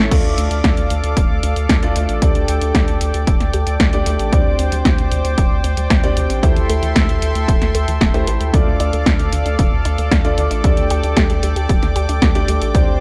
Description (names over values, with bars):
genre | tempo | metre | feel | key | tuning
italo disco | 114 BPM | 4/4 | straight | D minor | A4 = 440 Hz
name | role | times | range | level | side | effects
warm analog pad | sustained chords | 0.0-13.0 s | A4 to D6 | -26 LUFS | equal | chorus, tremolo
analog pluck | arpeggios | 0.0-12.9 s | E2 to G4 | -32 LUFS | equal | none
warm concert grand piano | stabs | 0.0-13.0 s | A3 to D5 | -26 LUFS | equal | tape echo
round analog bass | bass | 0.0-13.0 s | D1 to D2 | -22 LUFS | equal | none
electronic kick drum | drums | 0.1-12.9 s | none | -19 LUFS | equal | none
house drum kit | drums | 0.1-12.9 s | crash cymbal, hi-hat, snare drum | -23 LUFS | equal | none
room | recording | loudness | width
digital ambience | dry, gritty hardware recording | -16 LUFS | mono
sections
0.1-13.0 A section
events
none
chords
0.1 Dm; 2.2 Gsus2/D; 4.3 Csus2/D; 6.4 Am7/D; 8.5 Dm; 10.6 Gsus2/D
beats
| 0.12 0.64 1.17 1.69 | 2.22 2.75 3.27 3.80 | 4.33 4.85 5.38 5.91 | 6.43 6.96 7.48 8.01 | 8.54 9.06 9.59 10.12 | 10.64 11.17 11.69 12.22 | 12.75